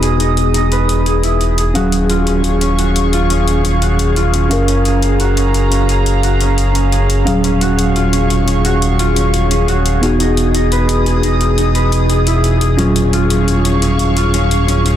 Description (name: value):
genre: liquid drum and bass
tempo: 174 BPM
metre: 4/4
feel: straight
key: Eb minor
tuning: A4 = 440 Hz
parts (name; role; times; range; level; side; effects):
- tine electric piano; accompaniment; 0.0-15.0 s; Gb3 to F5; -18 LUFS; right 1 dB; medium stereo tremolo, low-pass filter, dub echo
- airy breathy pad; sustained chords; 0.0-15.0 s; G#4 to D#6; -20 LUFS; left 2 dB; chorus
- concert harp; arpeggios; 0.0-15.0 s; Db4 to B4; -20 LUFS; right 2 dB; low-pass filter, dub echo
- smooth gliding synth bass; bass; 0.0-15.0 s; Eb1 to Gb1; -15 LUFS; equal; none
- electronic hi-hat; drums; 0.0-14.9 s; none; -23 LUFS; left 5 dB; small room ambience
room: light reverb, small room ambience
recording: dense, heavily limited modern master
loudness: -11 LUFS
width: side -11 dB against mid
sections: 0.0-15.0 A section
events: filter sweep on analog synth pad 0.0-15.0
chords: 0.0 Emaj7; 1.8 Ebm11; 4.5 Gbmaj9; 7.3 Ebm11; 10.0 Emaj7; 12.8 Ebm11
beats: 0.03 | 0.37 0.72 1.06 1.41 | 1.75 2.10 2.44 2.79 | 3.13 3.48 3.82 4.17 | 4.51 4.86 5.20 5.55 | 5.89 6.24 6.58 6.92 | 7.27 7.62 7.96 8.30 | 8.65 8.99 9.34 9.68 | 10.03 10.37 10.72 11.06 | 11.41 11.75 12.10 12.44 | 12.79 13.13 13.48 13.82 | 14.17 14.51 14.86